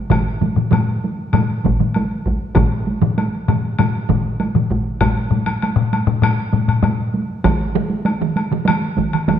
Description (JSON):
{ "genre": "japanese traditional, taiko drum ensemble", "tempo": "98 BPM", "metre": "4/4", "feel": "straight", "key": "none", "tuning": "none", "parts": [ { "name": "solo taiko drums", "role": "percussion", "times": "0.1-9.4 s", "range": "none", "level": "-21 LUFS", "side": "right 3 dB", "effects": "none" }, { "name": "solo taiko drums", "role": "percussion", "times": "0.1-7.0 s", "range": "none", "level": "-19 LUFS", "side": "left 5 dB", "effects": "none" }, { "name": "taiko ensemble", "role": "percussion", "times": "0.1-9.4 s", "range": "none", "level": "-21 LUFS", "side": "right 5 dB", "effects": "none" }, { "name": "taiko ensemble", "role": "percussion", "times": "0.1-9.4 s", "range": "none", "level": "-23 LUFS", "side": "right 1 dB", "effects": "none" }, { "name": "woodblock", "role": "percussion", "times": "0.1-9.4 s", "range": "none", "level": "-26 LUFS", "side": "left 3 dB", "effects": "none" } ], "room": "wet recital hall reverb, RT60 1.8 s", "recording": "none", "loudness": "-16 LUFS", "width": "side -9 dB against mid", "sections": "0.0-5.0 A section; 5.0-9.4 B section", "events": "none", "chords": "none" }